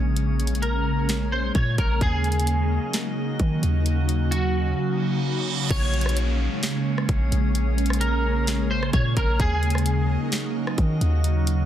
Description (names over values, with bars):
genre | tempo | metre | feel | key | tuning
hip hop, atmospheric cloud-rap | 130 BPM | 4/4 | half-time | Bb minor | A4 = 440 Hz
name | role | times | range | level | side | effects
electric guitar at the edge of break-up | melody | 0.0-11.2 s | Gb4 to Db5 | -29 LUFS | equal | ensemble chorus, digital delay
ethereal airy pad | sustained chords | 0.0-11.7 s | Db3 to F5 | -26 LUFS | right 1 dB | ensemble chorus, built-in reverb, phaser, sidechain pumping
warm 808-style bass | bass | 0.0-11.7 s | Bb1 to Eb3 | -23 LUFS | equal | none
drifting glass-harmonics texture | texture | 0.0-11.7 s | Db4 to F5 | -37 LUFS | equal | chorus, built-in reverb
trap drum kit | drums | 0.2-11.6 s | crash cymbal, hi-hat, kick drum, rim click, snare drum | -26 LUFS | equal | none
reverse cymbal and downlifter | sound effects | 5.0-9.4 s | none | -32 LUFS | right 4 dB | none
room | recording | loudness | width
light reverb, digital ambience | dense, heavily limited modern master | -21 LUFS | side -11 dB against mid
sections
0.0-5.7 A section; 5.7-11.7 B section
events
drums muted 4.8-5.7; reverse cymbal 5.0-5.7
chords
0.0 Bbm7; 2.0 Ebm7; 5.7 Bbm7; 9.4 Ebm7